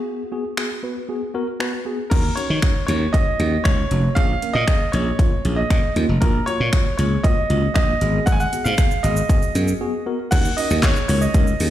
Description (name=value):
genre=dance-pop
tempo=117 BPM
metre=4/4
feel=straight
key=Eb minor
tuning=A4 = 439 Hz
part: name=mellow tine electric piano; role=accompaniment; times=0.0-11.7 s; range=Bb3 to Cb5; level=-27 LUFS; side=left 1 dB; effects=medium stereo tremolo, sidechain pumping
part: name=pop drum kit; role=drums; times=0.6-11.7 s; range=crash cymbal, finger snaps, handclaps, hi-hat, kick drum, shaker, snare drum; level=-19 LUFS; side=equal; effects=overdrive
part: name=bright grand piano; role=melody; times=2.1-11.7 s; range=Bb4 to Ab5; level=-24 LUFS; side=right 2 dB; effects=tape echo
part: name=glassy slap bass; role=bass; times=2.1-11.7 s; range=F1 to Eb3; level=-20 LUFS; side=equal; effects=sidechain pumping
room=digital ambience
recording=played on a big sound system in a bare room, large studio reverb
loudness=-17 LUFS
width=side -12 dB against mid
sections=0.0-2.1 A section; 2.1-10.3 B section; 10.3-11.7 C section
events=break 9.8-10.3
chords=0.0 Abm7; 2.1 Ebm7; 4.2 Bbm7; 6.2 Gbmaj7/Bb; 8.0 Abm7; 10.3 Ebm7